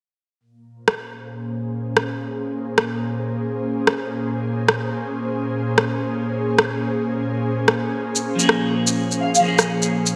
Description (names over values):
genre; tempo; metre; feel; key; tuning
future garage; 126 BPM; 4/4; swing 60% on 16ths; Bb minor; A4 = 441 Hz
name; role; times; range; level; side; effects
ethereal airy pad; sustained chords; 1.2-10.2 s; Bb2 to C5; -26 LUFS; equal; ensemble chorus, built-in reverb, vintage 12-bit sampler grit
electronic rim click and shaker; drums; 0.9-10.1 s; none; -21 LUFS; equal; small room ambience
clean electric guitar; accompaniment; 8.4-10.2 s; F3 to Ab4; -24 LUFS; equal; tape echo
breathy flute-like synth lead; melody; 9.2-9.4 s; F5; -24 LUFS; equal; ensemble chorus, tape echo
room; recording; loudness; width
moderate lush hall reverb, RT60 1.8 s; none; -22 LUFS; mono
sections
0.4-10.2 A section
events
none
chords
0.4 Bbm7